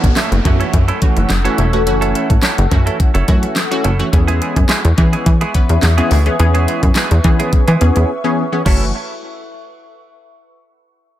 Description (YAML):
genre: dance-pop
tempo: 106 BPM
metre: 4/4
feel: straight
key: F# minor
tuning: A4 = 443 Hz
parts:
  - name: funky polysynth comp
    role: accompaniment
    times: 0.0-8.9 s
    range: E3 to B4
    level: -20 LUFS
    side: equal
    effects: chorus, sidechain pumping
  - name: glassy FM pad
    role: sustained chords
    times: 0.4-8.9 s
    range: A4 to E6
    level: -25 LUFS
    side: left 3 dB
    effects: ensemble chorus, built-in reverb, phaser, sidechain pumping
  - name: direct-recorded clean electric guitar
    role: riff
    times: 0.0-8.8 s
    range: G#3 to A4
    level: -23 LUFS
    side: right 5 dB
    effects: analog chorus, analog delay
  - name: plucky analog bass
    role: bass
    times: 0.0-8.9 s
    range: E1 to E3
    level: -14 LUFS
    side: equal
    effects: sidechain pumping
  - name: smooth R&B drum kit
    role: drums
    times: 0.0-8.8 s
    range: crash cymbal, handclaps, hi-hat, kick drum, snare drum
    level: -15 LUFS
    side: equal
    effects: analog delay
  - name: downlifter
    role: sound effects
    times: 0.0-4.1 s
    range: none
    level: -28 LUFS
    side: equal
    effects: none
room: light reverb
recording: echo-heavy mix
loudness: -12 LUFS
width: side -13 dB against mid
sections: 0.0-8.7 A section; 8.7-10.9 B section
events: break 8.1-8.7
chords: 0.0 F#m7; 4.1 C#m7; 8.7 F#m7